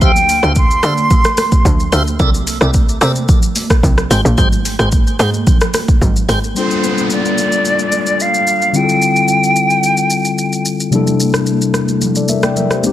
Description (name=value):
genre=amapiano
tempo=110 BPM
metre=4/4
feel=straight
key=G dorian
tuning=A4 = 438 Hz
part: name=silver concert flute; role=melody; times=0.0-1.9, 6.6-10.7 s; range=C5 to C6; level=-15 LUFS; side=right 1 dB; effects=tape echo
part: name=tonewheel organ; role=stabs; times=0.0-6.4 s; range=G4 to G5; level=-22 LUFS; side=right 1 dB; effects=slow rotary speaker, tape echo
part: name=tight log drum bass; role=bass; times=0.0-6.5 s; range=Ab1 to D3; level=-16 LUFS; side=equal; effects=none
part: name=afro-pop drum kit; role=drums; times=0.0-12.9 s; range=hi-hat, kick drum, rim click, shaker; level=-15 LUFS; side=equal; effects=none
part: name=congas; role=percussion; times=0.0-6.4, 10.9-12.9 s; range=none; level=-22 LUFS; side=right 6 dB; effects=none
part: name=mellow tine electric piano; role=accompaniment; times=6.5-12.9 s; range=C3 to G5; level=-15 LUFS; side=left 4 dB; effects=none
part: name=downlifter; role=sound effects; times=6.6-10.9 s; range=none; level=-23 LUFS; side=right 1 dB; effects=none
room=little or no reverb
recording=dense, heavily limited modern master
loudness=-11 LUFS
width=side -12 dB against mid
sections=0.0-6.6 A section; 6.6-12.9 B section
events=drop 0.0-6.6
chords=0.0 Dm11; 2.2 C13; 4.1 Abmaj7; 6.6 Gm9; 8.7 Dm11; 10.9 C13